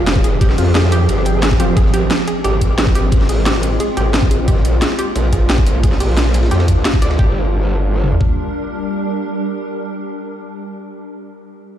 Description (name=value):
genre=dark technical drum and bass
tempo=177 BPM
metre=4/4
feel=straight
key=G phrygian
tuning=A4 = 440 Hz
part: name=swarming drone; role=sustained chords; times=0.0-10.7 s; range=F3 to Bb4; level=-22 LUFS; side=right 1 dB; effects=built-in reverb, sidechain pumping
part: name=orchestra-hit-like synth stab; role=stabs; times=0.0-1.7 s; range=F3 to F4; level=-24 LUFS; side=left 2 dB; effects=built-in reverb, ping-pong delay
part: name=growl bass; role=bass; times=0.0-8.2 s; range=F1 to F2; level=-16 LUFS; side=equal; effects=distortion, chorus, overdrive, sidechain pumping
part: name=crunchy breakbeat drum kit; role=drums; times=0.1-7.2 s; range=hi-hat, ride cymbal, snare drum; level=-32 LUFS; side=equal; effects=high-pass filter on cymbals, high-pass filter on hats, high-pass filter on snare, high-pass filter on room
part: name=drum and bass drum kit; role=drums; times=0.1-7.1 s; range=hi-hat, snare drum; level=-20 LUFS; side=equal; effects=overdrive
part: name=analog pluck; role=arpeggios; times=0.2-7.3 s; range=G4 to G5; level=-24 LUFS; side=right 2 dB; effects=chorus, sidechain pumping, ping-pong delay
part: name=drum and bass drum kit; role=drums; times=0.2-8.3 s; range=kick drum, toms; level=-15 LUFS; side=equal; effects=overdrive
room=light reverb, digital ambience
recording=played on a big sound system in a bare room, large studio reverb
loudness=-13 LUFS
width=side -11 dB against mid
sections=0.0-7.2 A section; 7.2-9.9 B section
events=none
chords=0.0 Fm; 1.8 Ab6; 4.5 Bb; 7.2 Gm